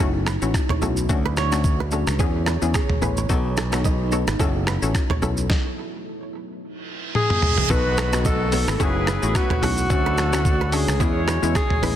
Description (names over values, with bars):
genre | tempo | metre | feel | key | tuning
afrobeats | 109 BPM | 4/4 | swing 55% on 16ths | E major | A4 = 440 Hz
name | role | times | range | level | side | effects
hollow square pluck | accompaniment | 0.0-12.0 s | G#3 to A4 | -28 LUFS | left 7 dB | chorus
deep dark ambient pad | sustained chords | 0.0-12.0 s | D3 to C#5 | -32 LUFS | right 3 dB | chorus, built-in reverb
kora | riff | 0.0-11.9 s | G#4 to D#5 | -30 LUFS | right 8 dB | tape echo
modern bright fingered electric bass | bass | 0.0-12.0 s | F#1 to E2 | -23 LUFS | equal | none
dusty soul sampler-style drum kit | drums | 0.3-12.0 s | finger snaps, hi-hat, kick drum, rim click, shaker, snare drum, toms | -23 LUFS | equal | soft clipping on snare
reverse cymbal and downlifter | sound effects | 6.8-12.0 s | none | -30 LUFS | right 2 dB | none
breathy alto saxophone | melody | 7.2-12.0 s | F#4 to B4 | -24 LUFS | left 1 dB | none
mellow horn section | second line | 7.7-11.8 s | D#3 to C#5 | -30 LUFS | equal | none
room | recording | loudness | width
digital ambience | dense, heavily limited modern master | -19 LUFS | side -11 dB against mid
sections
0.0-7.7 A section; 7.7-12.0 B section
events
stop 5.5-7.7; reverse cymbal 6.8-7.7; drum fill 7.1-7.7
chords
0.0 F#m7; 1.1 Dmaj7; 2.2 E6; 3.3 B7; 4.4 F#m7; 5.5 N.C.; 7.7 B7; 8.8 F#m7; 9.9 Dmaj7; 11.0 E6